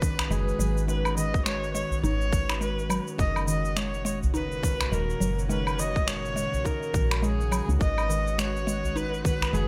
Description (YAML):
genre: organic downtempo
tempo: 104 BPM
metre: 4/4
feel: swing 59% on 16ths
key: G# minor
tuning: A4 = 440 Hz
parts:
  - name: rich kamancheh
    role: melody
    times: 0.0-9.7 s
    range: G#4 to D#5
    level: -34 LUFS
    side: equal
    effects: delay
  - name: tine electric piano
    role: accompaniment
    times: 0.0-9.7 s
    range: D#3 to B4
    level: -38 LUFS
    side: equal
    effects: analog chorus, sidechain pumping, digital delay
  - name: airy breathy pad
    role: sustained chords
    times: 0.0-9.7 s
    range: A#2 to C#5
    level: -40 LUFS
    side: equal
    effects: chorus, sidechain pumping
  - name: mallet-like synth pluck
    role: arpeggios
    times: 0.0-9.7 s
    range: D#3 to D#4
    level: -36 LUFS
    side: equal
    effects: chorus, phaser, digital delay
  - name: woody FM bass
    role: bass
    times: 0.0-9.7 s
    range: D#1 to C#2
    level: -32 LUFS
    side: equal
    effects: sidechain pumping
  - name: electronic kick drum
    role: drums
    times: 0.0-9.4 s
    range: none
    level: -29 LUFS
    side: equal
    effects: overdrive
  - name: electronic shaker, finger snaps and woodblock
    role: drums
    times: 0.0-9.7 s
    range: none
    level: -35 LUFS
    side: equal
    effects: overdrive
  - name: udu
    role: percussion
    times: 0.2-9.5 s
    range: none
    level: -34 LUFS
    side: equal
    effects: none
  - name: twinkling granular texture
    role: texture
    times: 8.4-9.7 s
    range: F#4 to F#5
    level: -48 LUFS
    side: equal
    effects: built-in reverb
room: light reverb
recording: bright 1980s-style digital production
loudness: -27 LUFS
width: mono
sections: 0.0-9.7 A section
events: none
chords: 0.0 G#m7; 3.2 F#; 7.8 G#m7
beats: 0.30 | 0.88 1.46 2.04 2.61 | 3.19 3.77 4.34 4.92 | 5.50 6.07 6.65 7.23 | 7.80 8.38 8.96 9.54